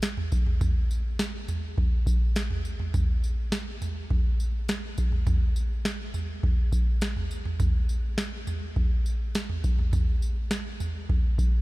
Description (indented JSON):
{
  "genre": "dream pop",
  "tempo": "103 BPM",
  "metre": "4/4",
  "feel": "straight",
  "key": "none",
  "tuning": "none",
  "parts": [
    { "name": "booming analog drum machine", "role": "drums", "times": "0.0-11.5 s", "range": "kick drum, snare drum, tambourine, toms", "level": "-24 LUFS", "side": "equal", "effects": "none" }
  ],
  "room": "little or no reverb",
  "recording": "dark, warm production",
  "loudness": "-25 LUFS",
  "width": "side -20 dB against mid",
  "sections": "0.0-11.6 A section",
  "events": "none",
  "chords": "none",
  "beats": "0.03 | 0.61 1.19 1.77 2.36 | 2.94 3.52 4.10 4.69 | 5.27 5.85 6.43 7.02 | 7.60 8.18 8.76 9.35 | 9.93 10.51 11.10"
}